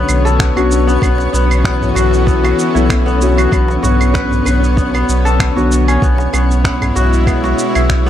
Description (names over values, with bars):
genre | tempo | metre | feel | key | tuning
organic downtempo | 96 BPM | 4/4 | swing 54% on 16ths | B dorian | A4 = 441 Hz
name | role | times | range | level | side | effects
muted felt-like synth keys | accompaniment | 0.0-6.0 s | B3 to C#5 | -20 LUFS | left 3 dB | chorus, sidechain pumping, tape echo
bowed-like drone | sustained chords | 0.0-8.1 s | B2 to C#5 | -18 LUFS | left 1 dB | built-in reverb, sidechain pumping
kora | arpeggios | 0.0-8.1 s | B3 to B4 | -19 LUFS | left 2 dB | tape echo
warm sub bass | bass | 0.0-8.1 s | B1 | -15 LUFS | equal | sidechain pumping
twinkling granular texture | texture | 0.0-8.1 s | C#4 to C#5 | -25 LUFS | equal | built-in reverb
electronic claves, cabasa and finger snaps | drums | 0.1-8.1 s | none | -22 LUFS | right 2 dB | none
electronic kick drum | drums | 0.4-8.0 s | none | -17 LUFS | equal | none
darbuka | percussion | 1.2-7.6 s | none | -26 LUFS | left 1 dB | none
room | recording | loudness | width
little or no reverb | dry, gritty hardware recording | -11 LUFS | side -11 dB against mid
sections
0.0-8.1 A section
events
none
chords
0.0 Bmadd9; 1.0 Esus4/B; 6.0 C#m7/B